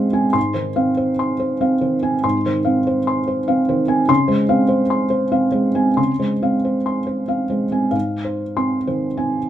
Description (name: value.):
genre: neoclassical minimalist piano.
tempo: 91-99 BPM.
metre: 3/4.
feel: rubato.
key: Ab major.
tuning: A4 = 440 Hz.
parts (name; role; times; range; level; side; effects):
felt-muted upright piano; solo; 0.0-9.5 s; Ab2 to C6; -16 LUFS; equal; none.
room: light reverb.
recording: minimal, uncompressed stereo recording.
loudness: -16 LUFS.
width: side -11 dB against mid.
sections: 0.0-7.9 A section; 7.9-9.5 B section.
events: none.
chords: 0.4 Ab6; 4.1 Dbmaj7; 7.9 Ab6.